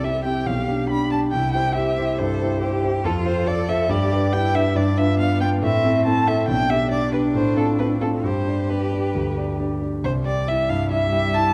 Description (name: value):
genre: quick classical-period movement for piano trio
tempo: 139 BPM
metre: 4/4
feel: straight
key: C major from 3.0 s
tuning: A4 = 440 Hz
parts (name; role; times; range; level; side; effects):
- warm violin; melody; 0.0-11.5 s; A4 to B5; -26 LUFS; equal; none
- rich cello; second line; 0.0-11.5 s; G3 to A4; -30 LUFS; equal; none
- warm concert grand piano; accompaniment; 0.0-11.5 s; B1 to D5; -24 LUFS; equal; none
room: wet recital hall reverb, RT60 1.9 s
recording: dark, warm production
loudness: -21 LUFS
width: mono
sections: 0.0-10.0 A section; 10.0-11.5 B section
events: none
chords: 0.5 G7/B; 1.3 C; 3.0 F; 3.9 G; 4.8 G7; 5.6 Am; 6.5 G/B; 7.4 F/A; 8.2 G; 10.0 C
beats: 0.04 0.47 0.90 | 1.32 1.75 2.18 2.61 | 3.04 3.47 3.90 4.33 | 4.76 5.20 5.63 6.06 | 6.49 6.92 7.35 7.79 | 8.24 8.70 9.15 9.60 | 10.04 10.48 10.91 11.34